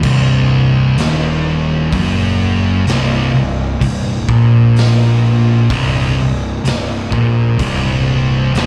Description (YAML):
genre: stoner and doom metal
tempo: 64 BPM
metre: 4/4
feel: straight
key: unclear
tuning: A4 = 439 Hz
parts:
  - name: thick fuzz guitar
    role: riff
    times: 0.0-8.7 s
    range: C2 to Bb2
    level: -22 LUFS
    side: equal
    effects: distortion
  - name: thick fuzz guitar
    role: riff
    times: 0.0-8.7 s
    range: C2 to Bb2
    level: -16 LUFS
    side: equal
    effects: distortion
  - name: fuzz picked electric bass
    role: bass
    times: 0.0-8.7 s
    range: C1 to Bb1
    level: -21 LUFS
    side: equal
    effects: overdrive
  - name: raw garage drum kit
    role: drums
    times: 0.0-8.7 s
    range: crash cymbal, hi-hat, kick drum, snare drum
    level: -24 LUFS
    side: equal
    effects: none
room: little or no reverb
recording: live gig heard through the venue's PA, club reverb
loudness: -14 LUFS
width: mono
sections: 0.0-8.7 A section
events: none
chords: 0.0 Cm